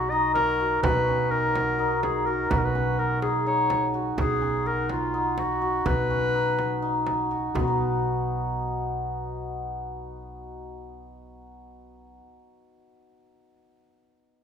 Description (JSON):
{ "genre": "contemporary instrumental, chamber music in an uneven meter", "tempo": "250 BPM (eighths)", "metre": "7/8", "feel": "straight", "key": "B major", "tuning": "A4 = 440 Hz", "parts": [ { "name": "clear clarinet", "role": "melody", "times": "0.0-7.1 s", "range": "E#4 to D#5", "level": "-27 LUFS", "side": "left 2 dB", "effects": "none" }, { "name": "hammered dulcimer", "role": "arpeggios", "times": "0.0-12.3 s", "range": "B3 to B4", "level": "-27 LUFS", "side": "equal", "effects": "none" }, { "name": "upright bass", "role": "bass", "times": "0.0-12.2 s", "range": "B1", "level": "-31 LUFS", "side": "right 3 dB", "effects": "none" }, { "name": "frame drum", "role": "percussion", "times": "0.4-7.8 s", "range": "none", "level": "-32 LUFS", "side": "right 2 dB", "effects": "none" }, { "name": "large celesta", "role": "texture", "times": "1.8-4.1, 7.5-12.2 s", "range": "F#4 to A#4", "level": "-35 LUFS", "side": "left 8 dB", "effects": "none" } ], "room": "moderate recital hall reverb, RT60 1.5 s", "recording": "minimal, uncompressed stereo recording", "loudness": "-23 LUFS", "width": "side -7 dB against mid", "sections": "0.0-7.6 A section; 7.6-10.9 B section", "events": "none", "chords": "0.0 F#6/B" }